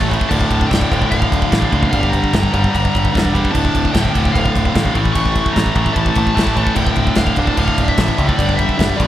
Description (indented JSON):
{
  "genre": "heavy metal",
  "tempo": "148 BPM",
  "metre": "4/4",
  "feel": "straight",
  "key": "D harmonic minor",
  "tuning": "A4 = 440 Hz",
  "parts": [
    { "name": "high-gain lead guitar", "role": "melody", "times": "0.0-9.1 s", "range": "D5 to C#6", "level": "-23 LUFS", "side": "left 3 dB", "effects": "distortion" },
    { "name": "high-gain distorted guitar", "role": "riff", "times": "0.0-9.1 s", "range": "D2 to A3", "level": "-17 LUFS", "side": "equal", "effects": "distortion" },
    { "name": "growling picked electric bass", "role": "bass", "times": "0.0-9.1 s", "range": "D1 to C#2", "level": "-20 LUFS", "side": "equal", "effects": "overdrive" },
    { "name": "modern studio drum kit", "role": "drums", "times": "0.0-9.1 s", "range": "crash cymbal, kick drum, snare drum", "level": "-18 LUFS", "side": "equal", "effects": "none" }
  ],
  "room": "light reverb",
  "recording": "dark, warm production",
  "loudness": "-13 LUFS",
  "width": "side -12 dB against mid",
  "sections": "0.0-9.1 A section",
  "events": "none",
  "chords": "0.3 Dm; 1.9 Gm; 3.5 Dm; 5.0 A; 6.8 D5; 8.4 G5",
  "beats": "| 0.31 0.71 1.12 1.52 | 1.92 2.33 2.73 3.14 | 3.54 3.94 4.35 4.75 | 5.16 5.56 5.96 6.37 | 6.77 7.17 7.58 7.98 | 8.39 8.79"
}